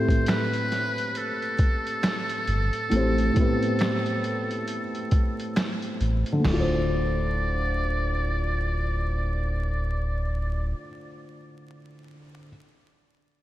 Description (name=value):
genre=lo-fi hip hop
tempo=68 BPM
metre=4/4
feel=swing 60% on 16ths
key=D dorian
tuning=A4 = 440 Hz
part: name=trumpet with metal mute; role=melody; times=0.0-10.7 s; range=A4 to D5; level=-31 LUFS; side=equal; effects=low-pass filter, tape echo
part: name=felt-muted upright piano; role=accompaniment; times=0.0-12.5 s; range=A2 to C6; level=-28 LUFS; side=equal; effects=low-pass filter
part: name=lo-fi sampler-style drum kit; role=drums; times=0.1-6.7 s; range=crash cymbal, finger snaps, hi-hat, kick drum, snare drum, toms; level=-26 LUFS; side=equal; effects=overdrive
part: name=sub bass with octave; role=bass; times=2.5-10.7 s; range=D1 to A1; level=-26 LUFS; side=equal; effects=none
room=moderate lush hall reverb, RT60 2.5 s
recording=dreamy mix soaked in reverb, vinyl crackle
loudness=-23 LUFS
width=side -14 dB against mid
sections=0.0-6.4 A section; 6.4-10.0 B section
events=none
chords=0.0 Am7; 6.4 Dm7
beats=0.27 1.15 2.04 | 2.92 3.80 4.68 5.56 | 6.45 7.33 8.21 9.09